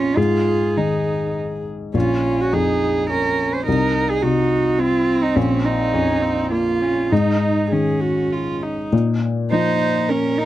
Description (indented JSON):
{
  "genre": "neoclassical piano and strings",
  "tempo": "99-107 BPM",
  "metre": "3/4",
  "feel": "rubato",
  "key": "Bb minor",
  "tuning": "A4 = 438 Hz",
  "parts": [
    { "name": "dark cello", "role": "second line", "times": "0.0-10.5 s", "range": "Db4 to C5", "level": "-20 LUFS", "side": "right 3 dB", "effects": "none" },
    { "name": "felt-muted upright piano", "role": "accompaniment", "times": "0.0-10.5 s", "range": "Bb1 to F3", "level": "-21 LUFS", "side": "left 3 dB", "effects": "none" },
    { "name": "warm viola", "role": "accompaniment", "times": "0.0-10.5 s", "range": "Bb3 to C5", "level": "-23 LUFS", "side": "right 1 dB", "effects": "none" }
  ],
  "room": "moderate booth ambience, RT60 0.3 s",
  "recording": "dark, warm production",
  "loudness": "-17 LUFS",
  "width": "side -14 dB against mid",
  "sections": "0.0-8.9 A section; 8.9-10.5 B section",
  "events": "none",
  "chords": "0.2 Ab5; 1.9 Bbm; 3.7 N.C.; 5.4 Bb5; 7.1 Absus4; 8.9 Bb5"
}